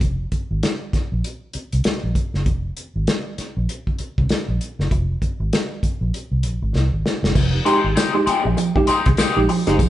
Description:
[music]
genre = funk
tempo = 98 BPM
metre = 4/4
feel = swing 60% on 16ths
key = F minor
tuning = A4 = 440 Hz
[part]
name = vintage muted fingered electric bass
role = bass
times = 0.0-9.9 s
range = F1 to C2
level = -22 LUFS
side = equal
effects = none
[part]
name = warm soul drum kit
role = drums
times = 0.0-9.9 s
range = crash cymbal, hi-hat, kick drum, snare drum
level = -22 LUFS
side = equal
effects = none
[part]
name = tine electric piano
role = stabs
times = 7.4-9.9 s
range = F3 to G4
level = -20 LUFS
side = right 3 dB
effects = none
[part]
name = tambourine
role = percussion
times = 7.4-9.9 s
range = none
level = -34 LUFS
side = left 4 dB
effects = none
[part]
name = raw garage guitar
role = accompaniment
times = 7.7-9.8 s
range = Ab3 to Ab4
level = -20 LUFS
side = left 4 dB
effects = wah, overdrive
[sound]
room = moderate stone room reverb, RT60 1.2 s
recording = band playing live in one room, nothing above 10.4 kHz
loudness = -18 LUFS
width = side -13 dB against mid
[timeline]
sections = 0.0-7.4 A section; 7.4-9.9 B section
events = drum fill 6.7-7.4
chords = 0.0 Fm; 7.4 Fm9

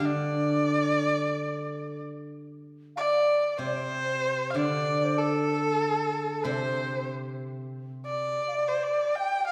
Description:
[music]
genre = chinese traditional, Chinese chamber ensemble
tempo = 94 BPM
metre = 4/4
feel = straight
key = unclear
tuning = A4 = 441 Hz
[part]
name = warm erhu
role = melody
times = 0.0-9.5 s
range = A4 to G5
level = -30 LUFS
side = equal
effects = none
[part]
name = steel-string zither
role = accompaniment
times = 0.0-8.4 s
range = C3 to G3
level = -33 LUFS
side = equal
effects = none
[part]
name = mellow xiao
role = second line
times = 3.0-9.5 s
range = A4 to G5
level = -33 LUFS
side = equal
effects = none
[sound]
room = wet recital hall reverb, RT60 1.7 s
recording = heard from further back in the room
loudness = -28 LUFS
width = mono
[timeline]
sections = 0.0-2.6 A section; 2.6-9.5 B section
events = none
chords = none

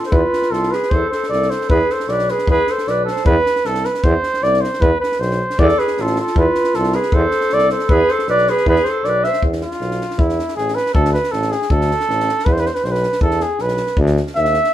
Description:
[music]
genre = balkan folk, Balkan brass band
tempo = 156 BPM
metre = 2/4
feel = straight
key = E phrygian dominant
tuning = A4 = 438 Hz
[part]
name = mellow cornet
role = melody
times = 0.0-14.7 s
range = E4 to E5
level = -18 LUFS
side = right 1 dB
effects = none
[part]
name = warm clarinet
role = second line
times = 0.0-3.3, 5.6-9.4 s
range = F4 to C5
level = -20 LUFS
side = left 1 dB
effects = none
[part]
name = compact cocktail drum kit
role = percussion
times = 0.0-14.7 s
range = kick drum, snare drum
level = -22 LUFS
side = equal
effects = none
[part]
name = clear tuba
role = bass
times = 0.1-14.6 s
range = A1 to E2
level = -20 LUFS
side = equal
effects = none
[sound]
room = moderate studio reverb, RT60 0.6 s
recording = band playing live in one room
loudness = -14 LUFS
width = side -12 dB against mid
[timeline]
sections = 0.0-3.3 A section; 3.3-9.4 A section; 9.4-14.7 B section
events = speeding up 0.0-14.7; cornet solo 9.4-14.7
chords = 0.1 F5; 1.7 E5; 3.3 Cmaj7; 4.8 E5; 5.6 Dm69; 6.4 F; 7.9 E5; 10.9 D5; 12.5 E5; 14.0 Dsus2

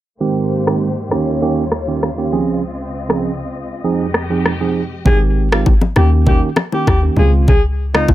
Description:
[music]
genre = afrobeats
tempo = 99 BPM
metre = 4/4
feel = straight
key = Ab major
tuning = A4 = 436 Hz
[part]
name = tine electric piano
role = accompaniment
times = 0.2-8.1 s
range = Db3 to Ab4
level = -18 LUFS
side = right 4 dB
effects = none
[part]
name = dark studio string section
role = sustained chords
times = 0.2-5.0 s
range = Db2 to Eb5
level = -23 LUFS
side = left 2 dB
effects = none
[part]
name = afro-pop drum kit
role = drums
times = 0.7-8.1 s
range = kick drum, rim click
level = -15 LUFS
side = equal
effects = overdrive
[part]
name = breathy alto saxophone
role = melody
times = 5.1-8.1 s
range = Eb4 to Ab4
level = -20 LUFS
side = left 2 dB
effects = ping-pong delay
[part]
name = deep log drum bass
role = bass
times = 5.1-8.1 s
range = Ab1 to Eb2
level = -14 LUFS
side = left 1 dB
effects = none
[part]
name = congas and bongos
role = percussion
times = 5.1-8.1 s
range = none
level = -20 LUFS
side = left 2 dB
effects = none
[sound]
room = little or no reverb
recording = low-pass filter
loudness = -13 LUFS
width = side -14 dB against mid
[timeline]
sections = 0.2-5.1 A section; 5.1-8.1 B section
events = filter sweep 0.2-5.1; hi-hats muted 5.1-8.1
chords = 0.2 Abmaj7; 1.1 Eb7; 2.3 Dbmaj7; 3.8 Fm7; 5.1 Abmaj7; 6.0 Eb7; 7.2 Dbmaj7

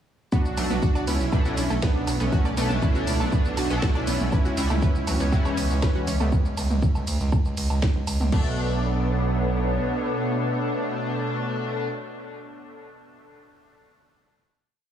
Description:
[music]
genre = melodic techno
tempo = 120 BPM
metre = 4/4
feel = straight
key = B minor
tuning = A4 = 440 Hz
[part]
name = soft supersaw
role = melody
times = 0.3-11.9 s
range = E3 to F#4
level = -30 LUFS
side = equal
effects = sidechain pumping, tape echo
[part]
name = wide unison pluck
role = arpeggios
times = 0.3-8.6 s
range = F#3 to D6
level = -33 LUFS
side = equal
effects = cassette tape, sidechain pumping, tape echo
[part]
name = bowed-like drone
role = drone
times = 1.3-11.9 s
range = B2 to B3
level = -36 LUFS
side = right 1 dB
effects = none
[part]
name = electronic kick drum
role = drums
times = 0.3-8.4 s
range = none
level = -22 LUFS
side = equal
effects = none
[part]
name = techno drum kit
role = drums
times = 0.3-8.4 s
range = crash cymbal, hi-hat, ride cymbal, shaker, snare drum, toms, woodblock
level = -31 LUFS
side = right 2 dB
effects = sidechain pumping on perc, sidechain pumping on hats, sidechain pumping on cymbals, sidechain pumping on toms
[part]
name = gritty driven synth bass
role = bass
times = 0.5-9.8 s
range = B1 to D2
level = -26 LUFS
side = right 1 dB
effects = sidechain pumping
[part]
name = sync-sweep polysynth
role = stabs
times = 0.6-11.9 s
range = B2 to E4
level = -31 LUFS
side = left 2 dB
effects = ensemble chorus, sidechain pumping, dub echo
[part]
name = evolving wavetable pad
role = sustained chords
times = 4.8-11.9 s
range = B2 to C#6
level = -34 LUFS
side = equal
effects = chorus, built-in reverb, sidechain pumping
[sound]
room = little or no reverb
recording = echo-heavy mix, small room reverb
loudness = -21 LUFS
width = side -10 dB against mid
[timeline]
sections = 0.3-8.3 drop; 8.3-12.3 final chord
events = drop 0.3-8.3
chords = 0.3 Bm7; 4.3 C#dim; 8.3 Bm7

